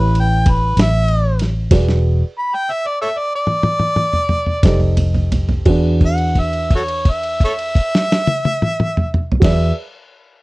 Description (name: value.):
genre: slow blues.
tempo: 58-64 BPM (dotted quarters).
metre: 12/8.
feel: straight.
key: E mixolydian.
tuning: A4 = 440 Hz.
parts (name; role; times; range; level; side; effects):
warm harmonica; melody; 0.0-9.7 s; F#4 to B5; -19 LUFS; equal; overdrive.
dark upright piano; accompaniment; 0.0-9.7 s; D4 to D5; -23 LUFS; right 4 dB; none.
vintage muted fingered electric bass; bass; 0.0-9.7 s; E1 to E2; -16 LUFS; equal; none.
dusty soul sampler-style drum kit; drums; 0.2-9.6 s; crash cymbal, kick drum, ride cymbal, snare drum, toms; -17 LUFS; equal; none.
room: little or no reverb.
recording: dry, close 1970s-style studio recording.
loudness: -14 LUFS.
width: side -21 dB against mid.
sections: 0.0-5.7 A section; 5.7-9.8 B section.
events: slowing down 0.5-5.7; drum fill 1.7-5.7; held note 5.7-9.4.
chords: 0.0 A7; 1.7 E7; 4.6 F9; 5.7 E7.